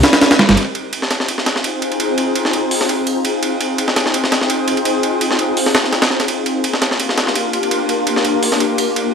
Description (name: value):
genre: drum and bass, jungle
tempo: 168 BPM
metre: 4/4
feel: swing 53% on 16ths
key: F dorian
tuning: A4 = 443 Hz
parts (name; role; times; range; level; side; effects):
- ethereal airy pad; sustained chords; 0.0-9.1 s; Bb3 to C5; -18 LUFS; left 2 dB; ensemble chorus, built-in reverb, vintage 12-bit sampler grit
- dark detuned saw bass; bass; 0.0-0.6 s; G1; -15 LUFS; equal; none
- breakbeat sampler-style drum kit; drums; 0.0-9.1 s; hi-hat, ride cymbal, snare drum; -16 LUFS; right 1 dB; high-pass filter on cymbals, small room ambience, high-pass filter on kick, high-pass filter on snare, high-pass filter on hats
room: moderate echo chamber reverb, RT60 1.3 s, digital ambience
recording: vinyl crackle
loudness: -14 LUFS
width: side -6 dB against mid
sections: 0.6-9.1 A section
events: break 0.0-0.6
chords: 0.0 Eb6; 0.6 Fm7; 6.3 Gm7